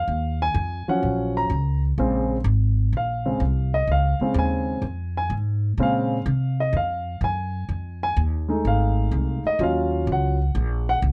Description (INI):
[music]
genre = jazz, big band swing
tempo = 126 BPM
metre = 4/4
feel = swing 68% on 8ths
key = Bb minor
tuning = A4 = 441 Hz
[part]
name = warm grand piano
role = accompaniment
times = 0.0-11.0 s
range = Db3 to Bb5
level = -26 LUFS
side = equal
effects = none
[part]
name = upright bass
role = bass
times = 0.0-11.1 s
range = Ab1 to C3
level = -25 LUFS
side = equal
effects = none
[sound]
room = little or no reverb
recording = dry, close 1970s-style studio recording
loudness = -23 LUFS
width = mono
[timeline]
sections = 0.0-11.1 A section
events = grand piano solo 0.0-11.1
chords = 0.1 Ebm9; 2.0 Bbm9; 7.7 F7#9; 9.6 Ebm9